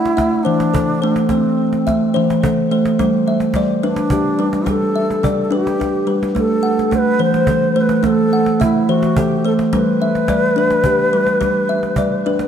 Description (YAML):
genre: world meditative, meditative tuned percussion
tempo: 71 BPM (dotted quarters)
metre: 6/8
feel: straight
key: A dorian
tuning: A4 = 440 Hz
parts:
  - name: bass bansuri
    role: melody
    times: 0.0-12.5 s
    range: C4 to C5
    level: -19 LUFS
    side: left 1 dB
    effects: diffuse ambient delay
  - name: kalimba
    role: arpeggios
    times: 0.0-12.5 s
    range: E3 to F#5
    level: -15 LUFS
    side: equal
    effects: diffuse ambient delay
  - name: cajon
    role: percussion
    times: 0.1-12.5 s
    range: none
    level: -24 LUFS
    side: right 1 dB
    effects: none
room: wet echo chamber reverb, RT60 1.8 s, studio ambience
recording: none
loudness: -14 LUFS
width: side -8 dB against mid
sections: 0.0-12.5 A section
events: none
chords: 0.0 Am; 3.0 G; 6.4 Am; 9.7 G